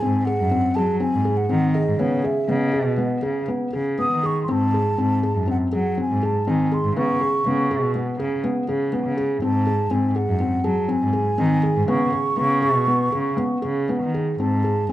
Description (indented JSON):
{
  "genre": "contemporary instrumental, chamber music in an uneven meter",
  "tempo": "121 BPM",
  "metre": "5/4",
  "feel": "straight",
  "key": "unclear",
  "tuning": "A4 = 440 Hz",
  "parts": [
    { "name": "mellow hollow concert flute", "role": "melody", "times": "0.0-14.9 s", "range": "C#5 to D#6", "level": "-25 LUFS", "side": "right 1 dB", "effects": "none" },
    { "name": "felt-muted upright piano", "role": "arpeggios", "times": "0.0-14.9 s", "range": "B3 to G#4", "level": "-22 LUFS", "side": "left 1 dB", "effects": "none" },
    { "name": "rich cello", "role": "bass", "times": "0.0-14.9 s", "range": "F#2 to F#3", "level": "-23 LUFS", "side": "equal", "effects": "none" }
  ],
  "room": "light reverb",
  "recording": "dark, warm production",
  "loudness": "-19 LUFS",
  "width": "side -14 dB against mid",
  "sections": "0.0-14.4 A section",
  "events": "none",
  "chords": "0.0 G#7; 2.0 C#sus2; 4.5 G#7b9; 7.0 C#5; 9.4 G#7b9; 11.9 C#sus2; 14.4 G#(b9)"
}